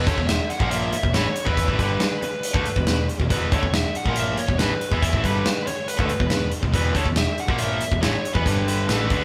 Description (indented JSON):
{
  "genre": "hard rock",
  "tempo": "140 BPM",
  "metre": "4/4",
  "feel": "straight",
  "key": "unclear",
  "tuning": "A4 = 440 Hz",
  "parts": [
    { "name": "high-gain lead guitar", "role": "melody", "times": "0.0-9.2 s", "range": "B4 to F#5", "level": "-30 LUFS", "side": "equal", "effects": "distortion" },
    { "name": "cranked stack guitar", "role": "riff", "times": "0.0-9.2 s", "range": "E2 to E4", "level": "-30 LUFS", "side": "equal", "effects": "overdrive" },
    { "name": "tight distorted guitar", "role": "riff", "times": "0.0-9.2 s", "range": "E2 to E4", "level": "-31 LUFS", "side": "equal", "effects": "distortion" },
    { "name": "hollow-body short-scale picked electric bass", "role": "bass", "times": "0.0-9.2 s", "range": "E1 to E2", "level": "-29 LUFS", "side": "equal", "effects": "none" },
    { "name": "big rock drum kit", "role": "drums", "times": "0.1-9.2 s", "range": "hi-hat, kick drum, snare drum", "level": "-26 LUFS", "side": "equal", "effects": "none" }
  ],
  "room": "moderate studio reverb, RT60 0.7 s",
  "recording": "band playing live in one room",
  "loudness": "-22 LUFS",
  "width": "mono",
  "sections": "0.0-9.2 A section",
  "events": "none",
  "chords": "0.0 E5; 8.5 G5; 8.9 E5"
}